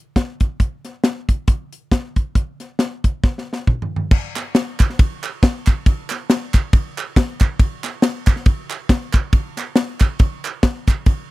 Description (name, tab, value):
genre	gospel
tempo	138 BPM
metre	4/4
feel	swing 56% on 8ths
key	none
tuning	none
part	crisp fusion drum kit	drums	0.2-11.2 s	crash cymbal, hi-hat, kick drum, ride cymbal, snare drum, toms	-15 LUFS	equal	none
part	group handclap	percussion	4.4-11.0 s	none	-27 LUFS	right 8 dB	none
room	little or no reverb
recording	dry, close 1970s-style studio recording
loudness	-17 LUFS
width	side -20 dB against mid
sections	0.0-4.1 A section; 4.1-11.3 B section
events	drum fill 3.2-4.1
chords	none